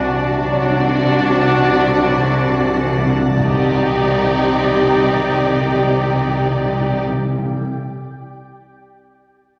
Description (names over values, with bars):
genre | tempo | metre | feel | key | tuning
cinematic, suspense film score | 83 BPM | 4/4 | straight | unclear | A4 = 441 Hz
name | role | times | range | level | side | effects
warm symphonic violin section | melody | 0.0-7.0 s | D5 | -28 LUFS | equal | none
warm symphonic violin section | second line | 0.0-7.0 s | F#4 to G4 | -23 LUFS | equal | none
rich symphonic viola section | accompaniment | 0.0-7.0 s | D4 to Eb4 | -24 LUFS | equal | none
shimmering ambient pad | sustained chords | 0.0-7.0 s | F#4 to A5 | -28 LUFS | equal | chorus, built-in reverb
clear symphonic double bass section | bass | 0.0-7.0 s | C2 | -28 LUFS | equal | none
rich symphonic cello section | bass | 0.0-7.0 s | C3 | -26 LUFS | equal | none
overtone-sweeping drone | drone | 0.0-7.0 s | C2 | -28 LUFS | equal | none
timpani | percussion | 0.0-7.7 s | C3 | -24 LUFS | equal | none
sub drop and impact | sound effects | 3.4-7.8 s | none | -31 LUFS | equal | none
dark baby grand piano | texture | 0.0-3.4 s | none | barely audible | none | none
mellow French horn section | sustained chords | 0.5-7.0 s | Eb3 to D5 | -28 LUFS | equal | none
room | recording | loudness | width
wet scoring stage reverb, RT60 1.5 s | none | -16 LUFS | mono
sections
0.0-3.4 A section; 3.4-6.3 B section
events
timpani fill 0.0-3.4; impact 0.0-0.5, 3.4-6.3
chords
0.0 D/C; 3.4 Cmadd9